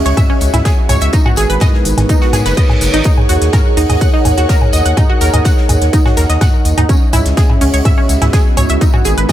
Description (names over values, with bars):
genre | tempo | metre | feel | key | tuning
melodic techno | 125 BPM | 4/4 | straight | Eb phrygian | A4 = 440 Hz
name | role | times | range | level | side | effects
dark analog pad | sustained chords | 0.0-9.3 s | Ab3 to Gb5 | -21 LUFS | right 1 dB | wide subtle chorus, sidechain pumping
ethereal airy pad | texture | 0.0-9.3 s | Cb4 to Gb5 | -21 LUFS | right 1 dB | ensemble chorus, built-in reverb, phaser, sidechain pumping
wide unison pluck | arpeggios | 0.1-9.3 s | Db4 to Gb6 | -18 LUFS | right 1 dB | sidechain pumping, ping-pong delay
gritty driven synth bass | bass | 0.1-9.3 s | Gb1 to Ab2 | -14 LUFS | equal | sidechain pumping
techno drum kit | drums | 0.1-9.3 s | hi-hat, toms, woodblock | -19 LUFS | equal | none
big rock drum kit | drums | 0.2-9.3 s | hi-hat, snare drum, tambourine | -28 LUFS | left 1 dB | sidechain pumping on hats, high-pass filter on hats, high-pass filter on snare, sidechain pumping on perc, high-pass filter on perc, high-pass filter on room
electronic kick drum | drums | 0.2-9.3 s | none | -12 LUFS | equal | none
reverse cymbal | sound effects | 2.3-3.1 s | none | -24 LUFS | right 3 dB | none
room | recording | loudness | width
small room ambience | none | -9 LUFS | side -12 dB against mid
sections
0.0-9.3 A section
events
reverse cymbal 2.3-3.1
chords
0.0 Dbm; 1.1 Abm7; 3.1 Ebm; 6.9 Dbm; 8.8 Abm7